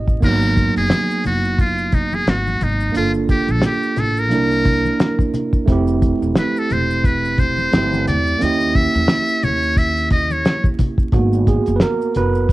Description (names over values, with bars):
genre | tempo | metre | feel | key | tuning
hip hop, jazz-hop | 88 BPM | 4/4 | swing 57% on 16ths | unclear | A4 = 435 Hz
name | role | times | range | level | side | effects
tine electric piano | accompaniment | 0.0-12.5 s | F#3 to D#5 | -20 LUFS | right 3 dB | medium stereo tremolo, cassette tape
upright bass | bass | 0.0-12.5 s | E1 to E2 | -21 LUFS | equal | none
cloth-damped thuddy drum kit | drums | 0.1-12.5 s | crash cymbal, hi-hat, kick drum, snare drum | -17 LUFS | equal | cassette tape
maracas and congas | percussion | 0.1-12.5 s | none | -28 LUFS | left 3 dB | none
trumpet with metal mute | melody | 0.3-10.7 s | D#4 to E5 | -20 LUFS | left 1 dB | cassette tape, plate reverb
room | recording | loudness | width
light reverb | home recording on cassette, vinyl crackle | -15 LUFS | side -17 dB against mid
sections
0.2-11.1 A section; 11.1-12.5 A section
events
tine electric piano fill 0.0; muted trumpet solo 0.2-11.1; tine electric piano solo 11.1-12.5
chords
0.2 G#m7; 2.9 Gm9; 4.3 C9; 5.7 Fmaj9; 8.4 D#7b9; 11.1 G#m7